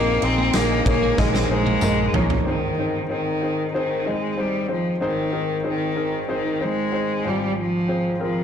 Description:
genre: piano-driven pop.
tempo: 94 BPM.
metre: 4/4.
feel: straight.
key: Ab major.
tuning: A4 = 441 Hz.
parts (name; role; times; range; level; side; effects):
clear cello; melody; 0.0-8.4 s; Eb3 to C4; -23 LUFS; equal; none.
warm concert grand piano; accompaniment; 0.0-8.4 s; Ab1 to Ab5; -25 LUFS; left 2 dB; none.
warm studio string section; sustained chords; 0.0-2.4 s; Bb4 to Eb6; -36 LUFS; left 3 dB; none.
twelve-string electric guitar; riff; 0.0-2.0 s; Ab3 to C4; -31 LUFS; right 6 dB; none.
vintage muted fingered electric bass; bass; 0.0-2.4 s; Bb1; -25 LUFS; right 1 dB; none.
huge arena drum kit; drums; 0.2-2.4 s; kick drum, ride cymbal, snare drum, toms; -24 LUFS; right 1 dB; none.
tambourine; percussion; 0.5-2.0 s; none; -36 LUFS; left 7 dB; none.
room: moderate large studio reverb, RT60 1.2 s, small room reverb.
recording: blown-out, overdriven recording, overdrive.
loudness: -20 LUFS.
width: side -8 dB against mid.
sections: 0.0-2.5 A section; 2.5-8.4 B section.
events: drum fill 1.2-2.5.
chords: 0.0 Ebsus4/Bb; 2.5 Ab; 7.2 Fm/Ab.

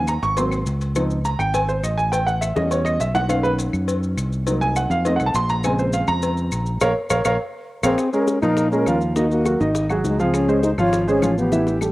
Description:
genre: Afro-Cuban jazz.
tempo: 205 BPM.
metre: 4/4.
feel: straight.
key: Bb minor.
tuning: A4 = 439 Hz.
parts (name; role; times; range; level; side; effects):
dark baby grand piano; accompaniment; 0.0-11.9 s; Db3 to Db6; -21 LUFS; right 1 dB; cassette tape.
fingered electric bass; bass; 0.0-11.9 s; Ab1 to Bb2; -23 LUFS; equal; none.
claves; percussion; 0.1-11.9 s; none; -32 LUFS; left 4 dB; none.
cowbell and bongos; percussion; 0.1-11.9 s; none; -29 LUFS; left 4 dB; none.
maracas; percussion; 0.1-11.9 s; none; -35 LUFS; left 2 dB; none.
breathy trombone; melody; 7.8-11.8 s; Ab3 to F4; -21 LUFS; left 2 dB; none.
breathy mellow concert flute; second line; 7.8-11.8 s; Eb4 to Db5; -27 LUFS; right 3 dB; cassette tape.
room: light reverb, small room ambience.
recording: home recording on cassette.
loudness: -18 LUFS.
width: side -18 dB against mid.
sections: 0.0-8.0 A section; 8.0-11.9 B section.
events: grand piano solo 0.0-8.0; drum fill 2.6-3.3, 11.5-11.9; band accent 6.8-8.0.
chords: 0.4 Ab7; 1.0 Dbmaj7; 2.1 A9; 3.3 Bmaj7; 4.5 Cm7b5; 5.1 F7; 5.6 Bbm7; 9.2 Ebm; 9.8 Ab5; 10.3 Dbmaj7.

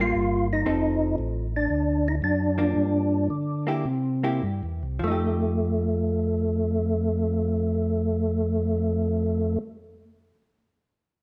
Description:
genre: soul jazz organ trio.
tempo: 100-117 BPM.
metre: 4/4.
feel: swing 67% on 8ths.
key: F mixolydian.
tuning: A4 = 440 Hz.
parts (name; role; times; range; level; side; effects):
percussive tonewheel organ; melody; 0.0-9.6 s; A3 to F4; -28 LUFS; equal; chorus vibrato, fast rotary speaker.
vintage hollow-body jazz guitar; accompaniment; 0.0-9.7 s; F3 to A4; -33 LUFS; equal; none.
tonewheel organ; bass; 0.0-9.6 s; F1 to D3; -29 LUFS; equal; chorus vibrato, slow rotary speaker.
room: moderate large studio reverb, RT60 1.4 s.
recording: none.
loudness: -25 LUFS.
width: mono.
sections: 0.0-5.0 A section; 5.0-9.9 B section.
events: slowing down 0.7-5.0.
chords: 0.0 C7(no3) (rootless); 0.7 F7; 1.7 D; 2.8 Gm7; 3.9 C7; 5.0 F9.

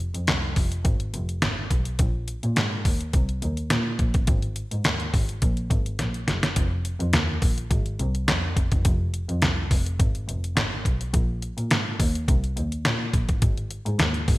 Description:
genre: early-eighties boogie funk.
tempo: 105 BPM.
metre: 4/4.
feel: straight.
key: unclear.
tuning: A4 = 436 Hz.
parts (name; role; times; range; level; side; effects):
clear double bass; bass; 0.1-14.4 s; F1 to Bb2; -26 LUFS; equal; none.
detuned 8-bit digital drum machine; drums; 0.1-14.4 s; handclaps, hi-hat, kick drum, snare drum; -23 LUFS; equal; gated reverb.
room: light reverb.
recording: bright 1980s-style digital production.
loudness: -22 LUFS.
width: side -19 dB against mid.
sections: 0.0-14.4 A section.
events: drum fill 6.0-6.6.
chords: none.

